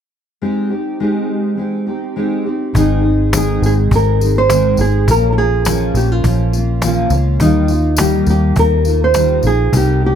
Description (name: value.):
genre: acoustic pop.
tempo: 103 BPM.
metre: 4/4.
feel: straight.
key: Ab major.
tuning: A4 = 436 Hz.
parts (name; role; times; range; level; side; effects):
fingerpicked steel-string acoustic guitar; accompaniment; 0.4-10.2 s; Ab2 to Ab4; -17 LUFS; equal; double-tracked left and right.
vintage muted fingered electric bass; bass; 2.7-10.2 s; Ab1 to Eb2; -15 LUFS; equal; none.
cajon; drums; 2.7-9.9 s; none; -18 LUFS; equal; none.
nylon-string guitar; melody; 2.8-10.1 s; Eb4 to C5; -16 LUFS; right 2 dB; tape echo.
tambourine; percussion; 2.8-9.9 s; none; -28 LUFS; left 7 dB; none.
room: small room ambience.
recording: none.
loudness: -12 LUFS.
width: side -8 dB against mid.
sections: 0.4-2.7 A section; 2.7-10.2 B section.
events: none.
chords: 0.4 Abmaj7; 2.7 Ab; 5.1 Bbm; 7.4 Ebadd9.